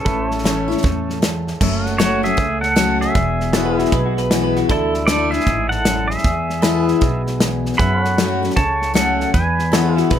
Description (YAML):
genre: honky-tonk and classic country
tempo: 155 BPM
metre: 4/4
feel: swing 64% on 8ths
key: unclear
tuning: A4 = 442 Hz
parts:
  - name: pedal steel guitar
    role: melody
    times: 0.0-9.9 s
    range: C#4 to B5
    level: -20 LUFS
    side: right 1 dB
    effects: none
  - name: picked steel-string acoustic guitar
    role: accompaniment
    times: 0.0-10.2 s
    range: E2 to F#4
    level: -21 LUFS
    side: left 6 dB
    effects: none
  - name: pedal steel guitar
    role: sustained chords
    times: 0.0-10.2 s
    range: A3 to F#5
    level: -26 LUFS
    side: right 3 dB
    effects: none
  - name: upright bass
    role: bass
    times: 0.1-10.2 s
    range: E1 to F#2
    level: -23 LUFS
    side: right 1 dB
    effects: none
  - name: natural country drum kit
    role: drums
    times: 0.1-10.2 s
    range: crash cymbal, hi-hat, kick drum, snare drum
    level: -20 LUFS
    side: equal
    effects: none
  - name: electric guitar through a small old amp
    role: second line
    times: 3.5-4.9, 10.0-10.2 s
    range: F#4 to B4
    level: -22 LUFS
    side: right 2 dB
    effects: tape echo
room: little or no reverb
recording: close, detailed microphones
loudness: -15 LUFS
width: side -10 dB against mid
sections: 0.0-1.6 A section; 1.6-10.2 B section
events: none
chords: 0.1 A; 1.6 F#m; 3.1 E; 4.7 Dsus2; 6.2 E; 7.8 F#m; 9.3 E